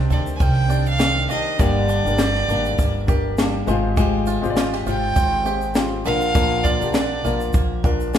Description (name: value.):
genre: acoustic pop.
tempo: 101 BPM.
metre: 4/4.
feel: swing 55% on 16ths.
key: C minor.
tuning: A4 = 444 Hz.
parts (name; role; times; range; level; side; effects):
flamenco guitar; accompaniment; 0.0-8.2 s; G2 to Bb4; -25 LUFS; left 4 dB; none.
warm upright piano; accompaniment; 0.0-8.2 s; Ab3 to Ab5; -29 LUFS; left 3 dB; none.
bluegrass banjo; arpeggios; 0.0-8.2 s; D3 to G4; -30 LUFS; right 4 dB; none.
upright bass; bass; 0.0-8.2 s; G1 to D2; -23 LUFS; right 1 dB; none.
warm violin; melody; 0.1-7.5 s; D5 to Ab5; -23 LUFS; right 3 dB; none.
compact cocktail drum kit; drums; 0.1-8.2 s; kick drum, shaker, snare drum; -21 LUFS; equal; none.
room: wet recital hall reverb, RT60 1.4 s.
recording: recorded in a church or concert hall.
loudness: -17 LUFS.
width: side -9 dB against mid.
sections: 0.0-8.2 A section.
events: upright piano fill 7.5-8.2.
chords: 0.0 Cmadd9; 1.6 Gm; 3.7 Fmadd9/Ab; 6.1 Bb.